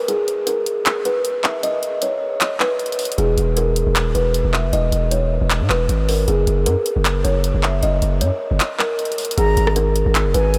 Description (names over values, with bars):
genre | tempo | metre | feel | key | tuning
hip hop, trap | 155 BPM | 4/4 | half-time | G# minor | A4 = 440 Hz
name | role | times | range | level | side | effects
kalimba | melody | 0.0-10.6 s | G#4 to E5 | -23 LUFS | equal | low-pass filter, diffuse ambient delay
Celtic harp | accompaniment | 0.0-0.8 s | G#3 | -57 LUFS | equal | none
trap drum kit | drums | 0.1-10.6 s | handclaps, hi-hat, rim click | -26 LUFS | equal | none
distorted 808-style bass | bass | 3.2-10.6 s | D#1 to G#2 | -21 LUFS | equal | distortion
breathy concert flute | second line | 9.4-10.6 s | G#5 to A#5 | -29 LUFS | equal | diffuse ambient delay
room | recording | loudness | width
moderate huge ambient reverb, RT60 7.0 s | dreamy mix soaked in reverb | -19 LUFS | mono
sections
0.0-9.4 A section; 9.4-10.6 B section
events
break 0.0-3.2; kick muted 8.6-9.4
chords
0.0 G#m; 3.2 E; 6.3 F#; 9.4 G#madd9